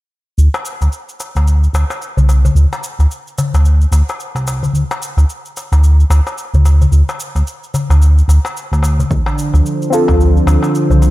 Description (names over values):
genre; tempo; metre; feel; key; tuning
organic downtempo; 110 BPM; 4/4; swing 59% on 16ths; unclear; A4 = 440 Hz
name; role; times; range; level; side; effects
smooth synth bass; bass; 0.4-11.1 s; C2 to D2; -9 LUFS; equal; sidechain pumping
cabasa; drums; 0.4-11.1 s; none; -30 LUFS; right 1 dB; none
darbuka; percussion; 0.5-11.1 s; none; -22 LUFS; left 2 dB; none
warm analog pad; sustained chords; 9.1-11.1 s; D3 to C5; -16 LUFS; right 1 dB; chorus, sidechain pumping
electronic kick drum; drums; 9.1-10.2 s; none; -18 LUFS; equal; none
deep mellow chord stab; accompaniment; 9.9-11.1 s; C4 to A4; -16 LUFS; left 1 dB; chorus, sidechain pumping, digital delay, slapback echo
room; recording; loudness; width
little or no reverb; none; -11 LUFS; side -17 dB against mid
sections
0.4-11.1 A section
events
filter sweep on analog synth bass 0.4-11.1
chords
0.4 Csus2; 4.7 N.C.; 9.1 Dm7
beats
| 0.38 0.92 1.47 2.02 | 2.56 3.11 3.65 4.20 | 4.74 5.29 5.83 6.38 | 6.92 7.47 8.02 8.56 | 9.11 9.65 10.20 10.74